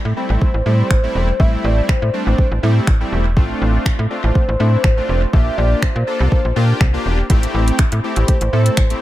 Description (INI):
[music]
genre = dance-pop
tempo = 122 BPM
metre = 4/4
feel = straight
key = unclear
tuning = A4 = 439 Hz
[part]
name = slap-like FM bass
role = bass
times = 0.1-8.9 s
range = E1 to Bb2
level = -16 LUFS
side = equal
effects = sidechain pumping
[part]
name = mellow horn-like synth lead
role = melody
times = 0.2-9.0 s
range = C5 to E5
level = -24 LUFS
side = equal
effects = chorus, analog delay
[part]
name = big bright polysynth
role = accompaniment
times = 0.2-9.0 s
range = G3 to A4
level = -22 LUFS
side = left 1 dB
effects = analog chorus, sidechain pumping, analog delay
[part]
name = smooth R&B drum kit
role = drums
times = 0.4-9.0 s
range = finger snaps, hi-hat, kick drum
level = -16 LUFS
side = equal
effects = none
[sound]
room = light reverb, digital ambience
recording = echo-heavy mix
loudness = -14 LUFS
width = side -15 dB against mid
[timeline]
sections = 0.0-9.0 A section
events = none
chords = 0.0 Am7; 3.4 Dm7/A; 5.3 Bb6; 7.3 Am7